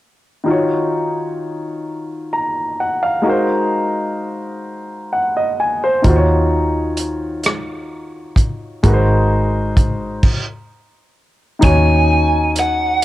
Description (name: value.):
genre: slow six-eight R&B.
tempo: 43 BPM (dotted quarters).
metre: 6/8.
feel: straight.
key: Eb dorian.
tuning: A4 = 440 Hz.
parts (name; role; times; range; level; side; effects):
warm baby grand piano; accompaniment; 0.4-13.0 s; Eb3 to Bb5; -18 LUFS; left 1 dB; cassette tape.
warm soul drum kit; drums; 6.0-13.0 s; crash cymbal, hi-hat, kick drum, rim click; -15 LUFS; equal; none.
vintage muted fingered electric bass; bass; 6.1-13.0 s; Ab1 to Eb2; -17 LUFS; equal; none.
lead guitar through a small cranked amp; melody; 11.6-13.0 s; Gb5 to Ab5; -16 LUFS; right 1 dB; overdrive.
room: light reverb, studio ambience.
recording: home recording on cassette.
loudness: -14 LUFS.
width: side -15 dB against mid.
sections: 0.5-11.6 A section; 11.6-13.0 B section.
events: grand piano fill 4.7-6.0; stop 10.2-11.6.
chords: 0.5 Ebm9; 3.3 Ab7; 6.0 Ebm9; 8.8 Ab7; 11.6 Ebm7.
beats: | 0.47 1.86 | 3.26 4.65 | 6.05 7.44 | 8.84 10.23 | 11.63 13.03.